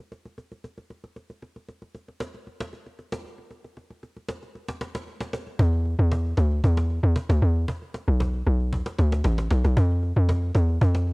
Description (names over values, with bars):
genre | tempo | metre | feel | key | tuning
amapiano | 115 BPM | 4/4 | straight | unclear | A4 = 441 Hz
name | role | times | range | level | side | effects
cajon | drums | 0.1-11.1 s | none | -34 LUFS | equal | cassette tape
tight log drum bass | bass | 5.6-11.1 s | A1 to F2 | -20 LUFS | equal | none
room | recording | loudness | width
studio reverb | home recording on cassette | -21 LUFS | side -33 dB against mid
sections
0.0-5.6 A section; 5.6-11.1 B section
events
drop 5.6-11.1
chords
none